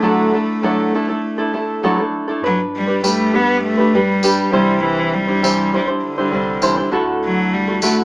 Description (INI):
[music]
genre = acoustic pop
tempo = 100 BPM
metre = 4/4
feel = straight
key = G major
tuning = A4 = 440 Hz
[part]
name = warm cello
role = melody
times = 0.0-8.0 s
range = D3 to B3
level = -18 LUFS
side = equal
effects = none
[part]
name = nylon-string guitar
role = accompaniment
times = 0.0-8.0 s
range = C3 to C5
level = -16 LUFS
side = equal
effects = none
[part]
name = picked electric bass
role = bass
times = 2.4-8.0 s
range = G1 to D2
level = -32 LUFS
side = equal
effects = none
[part]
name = tambourine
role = percussion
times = 3.0-8.0 s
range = none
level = -22 LUFS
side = left 1 dB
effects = none
[sound]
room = moderate large studio reverb, RT60 0.9 s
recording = band playing live in one room, small speaker sound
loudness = -14 LUFS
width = side -24 dB against mid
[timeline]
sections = 0.0-2.4 A section; 2.4-8.0 B section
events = none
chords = 0.0 Dadd9; 2.4 G; 4.5 Cadd9; 6.9 Dadd9